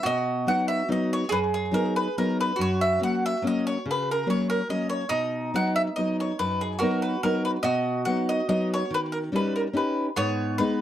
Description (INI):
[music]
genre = italian folk, Italian serenade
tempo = 143 BPM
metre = 3/4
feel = straight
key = B major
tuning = A4 = 444 Hz
[part]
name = bowl-back mandolin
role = melody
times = 0.0-10.8 s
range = G#4 to F#5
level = -27 LUFS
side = equal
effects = slapback echo
[part]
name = mandolin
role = second line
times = 0.0-10.8 s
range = B3 to G#4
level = -31 LUFS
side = right 4 dB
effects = none
[part]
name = nylon-string guitar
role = accompaniment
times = 0.1-10.8 s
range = F#2 to G4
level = -26 LUFS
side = left 1 dB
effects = none
[sound]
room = light reverb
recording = dry, close 1970s-style studio recording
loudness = -23 LUFS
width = side -11 dB against mid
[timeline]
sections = 0.0-10.2 A section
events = none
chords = 0.0 B; 2.6 F#; 5.1 B; 8.9 D#7; 10.2 G#m